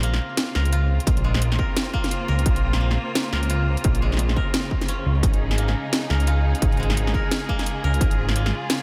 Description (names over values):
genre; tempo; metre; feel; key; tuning
half-time drum and bass; 173 BPM; 4/4; swing 59% on 16ths, half-time; Bb minor; A4 = 440 Hz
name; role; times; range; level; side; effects
clear studio string section; sustained chords; 0.0-8.8 s; Db3 to Ab4; -32 LUFS; equal; vintage 12-bit sampler grit, sidechain pumping
koto; arpeggios; 0.0-8.8 s; Ab3 to Bb4; -34 LUFS; equal; tape echo
dark detuned saw bass; bass; 0.0-8.5 s; Ab1 to Db2; -24 LUFS; equal; none
drum and bass drum kit; drums; 0.0-8.8 s; hi-hat, snare drum; -29 LUFS; equal; overdrive
electronic kick drum; drums; 1.1-8.1 s; none; -26 LUFS; equal; distortion
room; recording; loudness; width
light reverb; none; -22 LUFS; mono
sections
0.0-8.8 A section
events
none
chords
0.0 Bbmadd9; 5.2 Absus4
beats
0.03 0.38 0.72 | 1.07 1.42 1.76 2.11 | 2.46 2.81 3.15 3.50 | 3.85 4.19 4.54 4.89 | 5.23 5.58 5.93 6.27 | 6.62 6.97 7.31 7.66 | 8.01 8.35 8.70